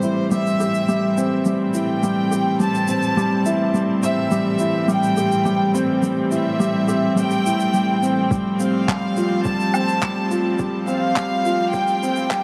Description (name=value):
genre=piano and strings electronica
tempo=105 BPM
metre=4/4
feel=straight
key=A minor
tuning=A4 = 441 Hz
part: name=bright chamber violin section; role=melody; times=0.0-12.4 s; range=C5 to A5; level=-26 LUFS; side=equal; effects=none
part: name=rich chamber string section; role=sustained chords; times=0.0-12.4 s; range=A2 to C4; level=-28 LUFS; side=equal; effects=sidechain pumping
part: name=felt-muted upright piano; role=riff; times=0.0-12.4 s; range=G3 to G4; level=-22 LUFS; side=equal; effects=none
part: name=shaker, handclaps and woodblock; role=drums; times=0.0-12.4 s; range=none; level=-32 LUFS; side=equal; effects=high-pass filter on perc, high-pass filter on snare, high-pass filter on room
part: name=electronic kick drum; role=drums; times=8.3-12.4 s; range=none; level=-29 LUFS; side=equal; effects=none
room=moderate huge ambient reverb, RT60 5.3 s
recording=high-pass filter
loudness=-20 LUFS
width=mono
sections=0.0-12.4 A section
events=build-up 0.0-12.4; filter sweep 0.0-12.4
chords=0.0 Am7; 8.3 Fadd9/A